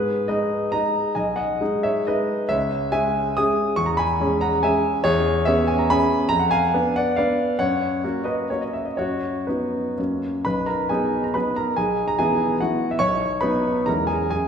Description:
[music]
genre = classical, romantic triple-time dance for piano with dotted rhythms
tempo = 116-154 BPM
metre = 3/4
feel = rubato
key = B major from 5.0 s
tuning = A4 = 438 Hz
[part]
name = warm concert grand piano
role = solo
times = 0.0-14.5 s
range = B1 to D#6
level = -19 LUFS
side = equal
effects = none
[sound]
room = wet recital hall reverb, RT60 1.7 s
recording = heard from further back in the room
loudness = -19 LUFS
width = side -7 dB against mid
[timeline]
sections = 0.0-10.4 A section; 10.4-14.5 B section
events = none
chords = 0.0 G#m; 1.2 G#m/B; 2.5 C#m; 3.8 C#m/E; 5.0 C#m7/E; 6.3 Fdim7; 7.6 F#; 9.0 B/F#; 10.0 F#; 10.4 B; 11.8 E/B; 13.0 B; 13.9 C#m/E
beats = 0.29 0.73 | 1.16 1.61 2.06 | 2.49 2.92 3.37 | 3.78 4.21 4.63 | 5.04 5.46 5.89 | 6.30 6.73 7.18 | 7.59 8.03 8.51 | 8.98 9.48 9.98 | 10.45 10.90 11.35 | 11.76 12.18 12.60 | 13.00 13.42 13.87 | 14.31

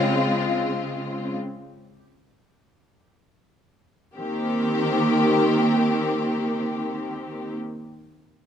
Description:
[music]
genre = trip hop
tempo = free time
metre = none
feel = none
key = C phrygian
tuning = A4 = 440 Hz
[part]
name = clear symphonic string section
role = sustained chords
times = 0.0-7.6 s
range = Db3 to G4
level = -21 LUFS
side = equal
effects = none
[sound]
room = moderate plate reverb, RT60 1.5 s, studio ambience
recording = dark, warm production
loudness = -21 LUFS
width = side -8 dB against mid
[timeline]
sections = 0.0-4.1 A section; 4.1-6.9 B section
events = none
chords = 0.0 Dbmaj7; 4.1 Cm7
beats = free time

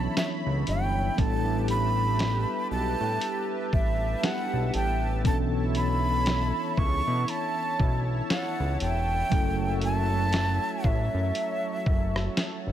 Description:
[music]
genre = contemporary R&B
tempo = 59 BPM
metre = 4/4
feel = swing 58% on 16ths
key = B minor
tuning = A4 = 440 Hz
[part]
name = jazz flute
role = melody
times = 0.0-12.7 s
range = E5 to C#6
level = -30 LUFS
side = right 2 dB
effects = tape echo
[part]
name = mellow tine electric piano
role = accompaniment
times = 0.0-12.7 s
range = E3 to A4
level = -32 LUFS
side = equal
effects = medium stereo tremolo
[part]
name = chorused pulse-width pad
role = sustained chords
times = 0.0-12.7 s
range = F#3 to B5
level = -35 LUFS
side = equal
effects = none
[part]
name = fat analog bass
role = bass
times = 0.0-12.7 s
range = E1 to B2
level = -28 LUFS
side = equal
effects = none
[part]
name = dusty soul sampler-style drum kit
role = drums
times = 0.2-12.6 s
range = hi-hat, kick drum, rim click, snare drum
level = -28 LUFS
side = equal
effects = none
[sound]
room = light reverb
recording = none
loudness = -24 LUFS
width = side -11 dB against mid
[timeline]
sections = 0.0-12.7 A section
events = none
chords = 0.0 Bm11; 1.2 A9sus4; 5.2 Bm11; 9.3 F#m7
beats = 0.17 | 1.18 2.20 3.22 4.23 | 5.25 6.27 7.28 8.30 | 9.32 10.34 11.35 12.37

